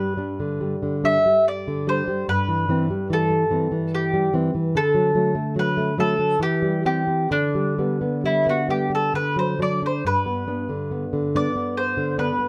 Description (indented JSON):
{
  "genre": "romantic duo for mandolin and classical guitar",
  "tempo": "64-74 BPM",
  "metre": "3/4",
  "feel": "rubato",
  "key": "G major",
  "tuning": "A4 = 436 Hz",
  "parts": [
    { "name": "mandolin", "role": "melody", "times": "0.0-12.5 s", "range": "D4 to E5", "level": "-25 LUFS", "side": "equal", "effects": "none" },
    { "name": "nylon-string guitar", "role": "accompaniment", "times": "0.0-12.5 s", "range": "G2 to D4", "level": "-25 LUFS", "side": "equal", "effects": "none" }
  ],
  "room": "light reverb",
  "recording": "none",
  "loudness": "-22 LUFS",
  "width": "mono",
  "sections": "0.0-12.5 A section",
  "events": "none",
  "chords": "0.0 G; 2.3 C/G; 4.8 D; 6.4 C/E; 7.3 G/D; 9.1 D; 10.0 G",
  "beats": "0.63 1.47 | 2.30 3.11 3.94 | 4.75 5.57 6.41 | 7.30 8.23 9.14 | 10.05 10.92 11.76"
}